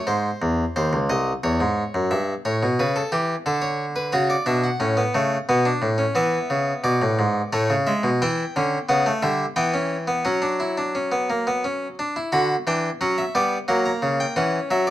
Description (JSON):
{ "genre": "classical, baroque-style 3-part fugue for harpsichord", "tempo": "88 BPM", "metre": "3/4", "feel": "straight", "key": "B minor", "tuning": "A4 = 441 Hz", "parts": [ { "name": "harpsichord", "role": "solo", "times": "0.0-14.9 s", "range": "B#1 to B5", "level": "-20 LUFS", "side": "equal", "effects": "none" } ], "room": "light reverb", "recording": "dark, warm production", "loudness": "-20 LUFS", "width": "side -13 dB against mid", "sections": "0.1-12.3 A section; 12.3-14.9 B section", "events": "none", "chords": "0.1 G#; 1.4 C#m/E; 2.1 A7/G; 3.5 D5; 4.1 F#m; 5.5 Bm7; 6.2 E; 7.5 Amaj7; 8.2 Em; 9.6 C#dim/E; 10.3 F#5; 12.3 Bm/D; 13.7 F#; 14.4 F#7(no3)/E" }